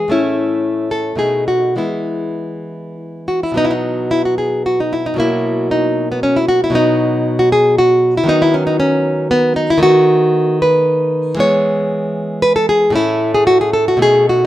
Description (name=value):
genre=classical, baroque-style dance for nylon-string guitar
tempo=98-119 BPM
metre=3/4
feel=rubato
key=E major, B major from 3.6 s, E major from 9.8 s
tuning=A4 = 440 Hz
part: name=nylon-string guitar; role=solo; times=0.0-14.5 s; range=A2 to C#5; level=-12 LUFS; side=equal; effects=none
room=moderate studio reverb, RT60 0.8 s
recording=band playing live in one room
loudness=-12 LUFS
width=side -14 dB against mid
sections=0.0-3.6 A section; 3.6-14.5 A section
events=none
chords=0.1 A; 1.2 B7; 1.8 E; 3.6 B5; 5.2 F#7/B; 6.8 B; 8.3 B/D#; 9.8 B7/D#; 11.4 E; 13.0 A